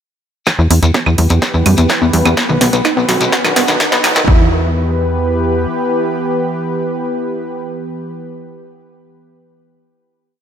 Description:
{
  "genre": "melodic techno",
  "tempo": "126 BPM",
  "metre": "4/4",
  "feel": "straight",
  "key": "E harmonic minor",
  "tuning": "A4 = 441 Hz",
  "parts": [
    { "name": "lush unison pad", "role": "sustained chords", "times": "1.0-8.1 s", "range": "D#3 to B4", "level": "-19 LUFS", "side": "equal", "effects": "chorus, sidechain pumping" },
    { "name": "warbly dusty pluck", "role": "arpeggios", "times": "0.5-4.5 s", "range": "B2 to F#4", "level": "-17 LUFS", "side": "equal", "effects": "chorus, sidechain pumping, dub echo" },
    { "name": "electronic kick drum", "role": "drums", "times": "0.5-4.4 s", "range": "none", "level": "-14 LUFS", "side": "equal", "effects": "high-pass filter on kick" },
    { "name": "punchy analog drum machine", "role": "drums", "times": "0.5-4.3 s", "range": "claves, congas, hi-hat, snare drum", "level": "-17 LUFS", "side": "right 1 dB", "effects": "high-pass filter on snare, high-pass filter on hats, high-pass filter on perc" },
    { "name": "shekere", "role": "percussion", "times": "0.5-4.3 s", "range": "none", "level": "-24 LUFS", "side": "left 5 dB", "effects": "none" },
    { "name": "riser", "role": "sound effects", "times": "1.5-4.3 s", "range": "none", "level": "-22 LUFS", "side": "right 2 dB", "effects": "none" },
    { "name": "tight sequencer bass", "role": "bass", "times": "0.6-5.7 s", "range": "B1 to F#2", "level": "-14 LUFS", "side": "equal", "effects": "sidechain pumping" }
  ],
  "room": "light reverb",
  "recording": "high-pass filter",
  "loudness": "-12 LUFS",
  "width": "side -8 dB against mid",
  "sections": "0.5-4.3 build; 4.3-8.1 final chord",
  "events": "build-up 0.5-4.3; drum fill 0.5-4.3; filter sweep on synth arpeggio sound 0.5-4.3; filter sweep 0.5-4.3; riser 1.5-4.3",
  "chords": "0.5 Em; 2.4 B; 4.3 Em"
}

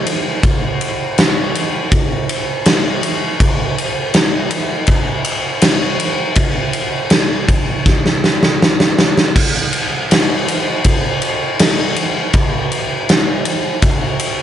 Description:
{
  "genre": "rock",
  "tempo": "81 BPM",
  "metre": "4/4",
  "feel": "straight",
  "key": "none",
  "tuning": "none",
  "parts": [
    { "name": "big rock drum kit", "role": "drums", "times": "0.1-14.4 s", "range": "crash cymbal, kick drum, ride cymbal, snare drum", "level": "-13 LUFS", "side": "equal", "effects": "none" }
  ],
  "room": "little or no reverb",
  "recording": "nothing above 11.0 kHz",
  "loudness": "-13 LUFS",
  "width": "side -10 dB against mid",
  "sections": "0.0-9.4 A section; 9.4-14.4 A section",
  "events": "drum fill 7.9-9.4",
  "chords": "none"
}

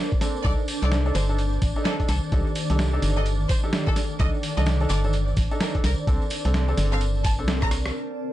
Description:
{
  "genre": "UK garage, two-step garage",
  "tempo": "128 BPM",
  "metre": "4/4",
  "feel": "swing 61% on 16ths",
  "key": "C dorian",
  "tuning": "A4 = 435 Hz",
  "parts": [
    { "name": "warm analog pad", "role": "sustained chords", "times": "0.0-8.3 s", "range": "C4 to D5", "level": "-36 LUFS", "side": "equal", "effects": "chorus, sidechain pumping" },
    { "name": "granular cloud pad", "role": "texture", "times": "0.0-8.3 s", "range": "Eb3 to A5", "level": "-32 LUFS", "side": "equal", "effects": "built-in reverb, sidechain pumping" },
    { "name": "boom bap sampler-style drum kit", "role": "drums", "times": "0.1-7.9 s", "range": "hi-hat, rim click, snare drum", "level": "-29 LUFS", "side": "right 1 dB", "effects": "none" },
    { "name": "electronic kick drum", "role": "drums", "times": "0.1-7.7 s", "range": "none", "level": "-24 LUFS", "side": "equal", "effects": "none" },
    { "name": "tambourine", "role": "percussion", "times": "0.1-7.9 s", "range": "none", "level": "-39 LUFS", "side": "right 1 dB", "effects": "none" },
    { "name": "warm grand piano", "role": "stabs", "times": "0.2-7.7 s", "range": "C4 to A4", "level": "-31 LUFS", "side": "right 1 dB", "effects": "vintage 12-bit sampler grit, ping-pong delay" },
    { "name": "bright studio violin section", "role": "melody", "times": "0.4-7.7 s", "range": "A4 to Bb5", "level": "-33 LUFS", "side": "equal", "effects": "digital delay" },
    { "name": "organ-like FM bass", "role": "bass", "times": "0.4-7.9 s", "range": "G1 to C2", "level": "-23 LUFS", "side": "equal", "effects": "sidechain pumping" }
  ],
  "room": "light reverb",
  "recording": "dark, warm production, nothing above 10.8 kHz",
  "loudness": "-21 LUFS",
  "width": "side -14 dB against mid",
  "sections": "0.0-7.9 A section",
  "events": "drum fill 7.6-7.9; band accent 7.8",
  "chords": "0.4 Cm69/G; 6.1 Bbmaj9"
}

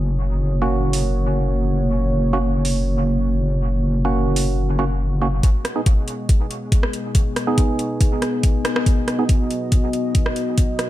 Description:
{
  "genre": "deep dubstep",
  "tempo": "140 BPM",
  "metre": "4/4",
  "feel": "half-time",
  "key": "G# minor",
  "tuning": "A4 = 441 Hz",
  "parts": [
    { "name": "dark analog pad", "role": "sustained chords", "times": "0.0-10.9 s", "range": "A#3 to D#5", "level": "-25 LUFS", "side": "equal", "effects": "chorus" },
    { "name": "wobble bass", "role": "bass", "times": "0.0-5.4 s", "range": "F#1", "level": "-20 LUFS", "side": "equal", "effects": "chorus" },
    { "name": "percussive organ stab", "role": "stabs", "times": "0.6-9.2 s", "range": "A#3 to G#4", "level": "-25 LUFS", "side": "right 3 dB", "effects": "chorus, dub echo" },
    { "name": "garage drum kit", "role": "drums", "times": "0.9-10.9 s", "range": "hi-hat, rim click", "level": "-25 LUFS", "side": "right 1 dB", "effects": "overdrive" },
    { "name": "electronic kick drum", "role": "drums", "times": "5.4-10.7 s", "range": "none", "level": "-17 LUFS", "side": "equal", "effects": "overdrive" }
  ],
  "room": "light reverb",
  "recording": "none",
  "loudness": "-17 LUFS",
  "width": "side -14 dB against mid",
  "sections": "0.0-5.4 A section; 5.4-10.9 B section",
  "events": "filter sweep on analog synth pad 0.0-5.4; build-up 5.4-10.9",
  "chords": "0.0 F#; 5.4 G#m"
}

